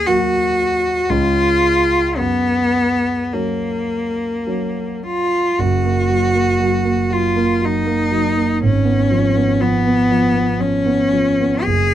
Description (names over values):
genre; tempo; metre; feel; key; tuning
classical, romantic duo for cello and grand piano; 52-62 BPM; 3/4; rubato; F# major; A4 = 439 Hz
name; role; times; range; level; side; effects
clear cello; melody; 0.0-11.9 s; A#3 to G#4; -17 LUFS; left 1 dB; none
dark concert grand piano; accompaniment; 0.0-11.9 s; F#1 to F#4; -19 LUFS; right 2 dB; none
room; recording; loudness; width
light reverb; dark, warm production; -15 LUFS; side -11 dB against mid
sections
0.0-5.6 A section; 5.6-11.9 B section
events
none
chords
0.0 D#m; 1.1 C#; 2.2 F#; 8.6 C#7/G#